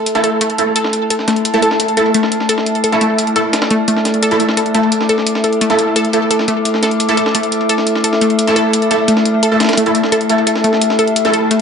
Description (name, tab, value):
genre	dark technical drum and bass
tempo	173 BPM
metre	4/4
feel	straight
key	unclear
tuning	A4 = 440 Hz
part	metallic inharmonic drone	sustained chords	0.0-11.6 s	A3 to D5	-18 LUFS	left 1 dB	chorus, built-in reverb
part	warbly tape-like pad	texture	0.0-11.6 s	A4 to D6	-19 LUFS	right 1 dB	chorus, built-in reverb
part	orchestra-hit-like synth stab	stabs	0.1-11.6 s	A3 to A4	-17 LUFS	right 1 dB	built-in reverb, phaser, tape echo
part	breakbeat sampler-style drum kit	drums	0.1-11.6 s	hi-hat, snare drum	-23 LUFS	equal	high-pass filter on hats, low-pass filter on hats, high-pass filter on snare, low-pass filter on snare
part	electronic hi-hat	drums	0.1-11.6 s	none	-20 LUFS	equal	overdrive
part	wide unison pluck	arpeggios	0.2-11.6 s	A3 to A4	-18 LUFS	left 2 dB	tape echo
room	moderate lush hall reverb, RT60 1.7 s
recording	nothing above 10.7 kHz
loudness	-12 LUFS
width	side -6 dB against mid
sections	0.0-11.6 A section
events	none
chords	0.0 A5